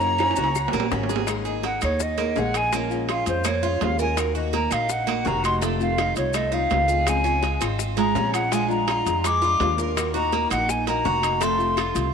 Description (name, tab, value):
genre	latin, Cuban son and guajira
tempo	166 BPM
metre	4/4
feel	straight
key	Bb minor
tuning	A4 = 440 Hz
part	hollow concert flute	melody	0.0-12.0 s	C5 to D6	-24 LUFS	equal	none
part	rich studio violin section	second line	0.0-0.9 s	Db5	-39 LUFS	left 8 dB	none
part	nylon-string guitar	accompaniment	0.0-12.1 s	C3 to Ab4	-29 LUFS	left 11 dB	none
part	Cuban tres	arpeggios	0.0-12.1 s	Ab3 to Bb4	-28 LUFS	right 10 dB	none
part	upright bass	bass	0.0-12.1 s	F1 to Gb2	-28 LUFS	equal	none
part	bongos	percussion	0.0-12.1 s	none	-34 LUFS	left 12 dB	none
part	maracas	percussion	0.0-12.1 s	none	-37 LUFS	left 14 dB	none
part	claves	percussion	0.2-12.0 s	none	-38 LUFS	left 13 dB	none
part	timbales	percussion	0.2-12.1 s	none	-32 LUFS	right 13 dB	none
room	moderate plate reverb, RT60 3.0 s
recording	1960s-style stereo with parts hard left and right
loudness	-20 LUFS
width	side -6 dB against mid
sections	0.0-1.3 A section; 1.3-12.1 B section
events	drum fill 0.0-1.3; flute solo 1.3-12.1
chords	0.0 Gb; 1.3 Absus2; 2.7 Bbm7; 4.2 Ebm; 5.6 F7; 7.1 Dbmaj7; 8.5 Bb7; 10.0 Ebm; 11.4 F